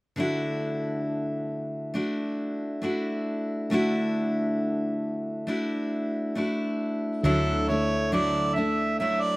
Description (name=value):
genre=folk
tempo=68 BPM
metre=4/4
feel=straight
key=D major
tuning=A4 = 440 Hz
part: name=picked steel-string acoustic guitar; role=accompaniment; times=0.2-9.4 s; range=D3 to F#4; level=-26 LUFS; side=equal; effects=none
part: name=warm harmonica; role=melody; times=7.2-9.4 s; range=A4 to E5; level=-26 LUFS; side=right 2 dB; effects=none
part: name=woody fretless electric bass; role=bass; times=7.2-9.4 s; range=D2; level=-30 LUFS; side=equal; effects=none
room=little or no reverb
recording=recorded outdoors, with no room sound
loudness=-25 LUFS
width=side -22 dB against mid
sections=0.2-7.2 A section; 7.2-9.4 B section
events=none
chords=0.2 Dadd9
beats=| 0.17 1.06 1.94 2.83 | 3.71 4.59 5.47 6.36 | 7.24 8.12 9.00